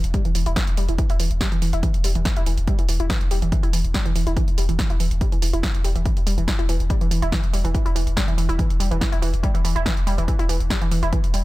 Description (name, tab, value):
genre	driving peak-time techno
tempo	142 BPM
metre	4/4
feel	straight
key	E minor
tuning	A4 = 441 Hz
part	saturated sub bass	bass	0.0-11.4 s	E1	-23 LUFS	equal	sidechain pumping, low-pass filter
part	techno drum kit	drums	0.0-11.4 s	hi-hat, snare drum	-28 LUFS	right 1 dB	sidechain pumping on hats
part	warbly dusty pluck	riff	0.1-11.4 s	E3 to E4	-27 LUFS	right 2 dB	chorus, tube saturation, sidechain pumping, ping-pong delay
part	electronic kick drum	drums	0.1-11.2 s	none	-22 LUFS	equal	none
room	digital ambience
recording	none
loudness	-19 LUFS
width	side -18 dB against mid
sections	0.0-11.4 A section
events	none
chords	none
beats	0.14 0.56 | 0.99 1.41 1.83 2.25 | 2.68 3.10 3.52 3.94 | 4.37 4.79 5.21 5.63 | 6.06 6.48 6.90 7.32 | 7.75 8.17 8.59 9.01 | 9.44 9.86 10.28 10.70 | 11.13